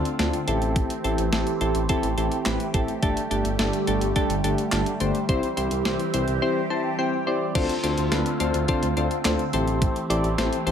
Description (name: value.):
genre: synth-pop.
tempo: 106 BPM.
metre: 4/4.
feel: straight.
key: D minor.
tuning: A4 = 440 Hz.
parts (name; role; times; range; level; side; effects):
soft electric-piano-like synth keys; accompaniment; 0.0-10.7 s; A3 to A5; -25 LUFS; left 3 dB; chorus.
phased analog pad; sustained chords; 0.0-10.7 s; D3 to G4; -28 LUFS; right 2 dB; phaser, chorus.
smooth synth bass; bass; 0.0-10.7 s; G1 to D2; -28 LUFS; right 1 dB; none.
clean 12-bit digital drum machine; drums; 0.1-10.7 s; crash cymbal, handclaps, hi-hat, kick drum, snare drum; -27 LUFS; right 1 dB; overdrive.
room: light reverb.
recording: none.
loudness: -21 LUFS.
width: side -8 dB against mid.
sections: 0.0-7.6 A section; 7.6-10.7 B section.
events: synth keys fill 6.4-7.6.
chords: 0.5 Am7; 3.0 Gsus2; 5.3 C; 7.6 Dm7; 9.5 Am7.